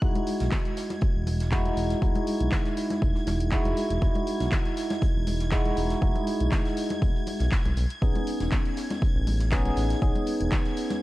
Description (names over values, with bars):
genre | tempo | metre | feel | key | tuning
deep house | 120 BPM | 4/4 | swing 53% on 16ths | E major | A4 = 440 Hz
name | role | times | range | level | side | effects
tine electric piano | stabs | 0.0-11.0 s | G#3 to G#4 | -29 LUFS | right 1 dB | lush chorus, sidechain pumping, analog delay
smooth synth bass | bass | 0.0-10.5 s | E1 to B1 | -27 LUFS | equal | sidechain pumping
electronic kick drum | drums | 0.0-10.6 s | none | -25 LUFS | equal | none
jazz brush drum kit | drums | 0.0-11.0 s | hi-hat, snare drum | -46 LUFS | right 1 dB | sidechain pumping on hats, high-pass filter on hats, high-pass filter on snare, high-pass filter on room
string machine, violins | texture | 0.0-11.0 s | G#6 | -42 LUFS | equal | ensemble chorus, sidechain pumping
punchy analog drum machine | drums | 0.2-11.0 s | handclaps, hi-hat | -36 LUFS | equal | none
congas | percussion | 0.2-11.0 s | none | -37 LUFS | left 2 dB | none
room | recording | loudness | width
digital ambience | none | -23 LUFS | side -17 dB against mid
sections
0.0-11.0 A section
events
none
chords
0.0 Emaj9; 8.0 Amaj9#11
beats
| 0.02 0.52 1.02 1.52 | 2.02 2.52 3.02 3.52 | 4.02 4.52 5.02 5.52 | 6.02 6.52 7.02 7.52 | 8.02 8.52 9.02 9.52 | 10.02 10.52 11.02